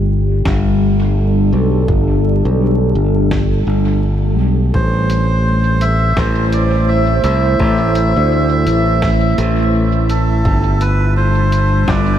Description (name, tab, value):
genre	ambient dub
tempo	84 BPM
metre	4/4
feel	swing 60% on 16ths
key	A minor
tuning	A4 = 444 Hz
part	deep dark ambient pad	sustained chords	0.0-12.2 s	G3 to C5	-18 LUFS	equal	chorus, built-in reverb
part	modern bright fingered electric bass	bass	0.0-12.2 s	G1 to D2	-14 LUFS	equal	tube saturation
part	electronic kick drum	drums	0.5-12.1 s	none	-20 LUFS	equal	studio reverb
part	lo-fi sampler-style drum kit	drums	0.5-12.1 s	hi-hat, snare drum	-30 LUFS	left 1 dB	studio reverb, dub echo
part	melodica	melody	4.7-12.2 s	A4 to E5	-19 LUFS	right 1 dB	dub echo
room	moderate huge ambient reverb, RT60 8.4 s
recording	dreamy mix soaked in reverb, vinyl crackle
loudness	-12 LUFS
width	side -10 dB against mid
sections	0.0-12.2 A section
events	none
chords	0.0 G69; 4.7 Am7; 10.5 Gsus2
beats	0.46 1.17 | 1.88 2.60 3.31 4.03 | 4.74 5.46 6.17 6.88 | 7.60 8.31 9.03 9.74 | 10.46 11.17 11.88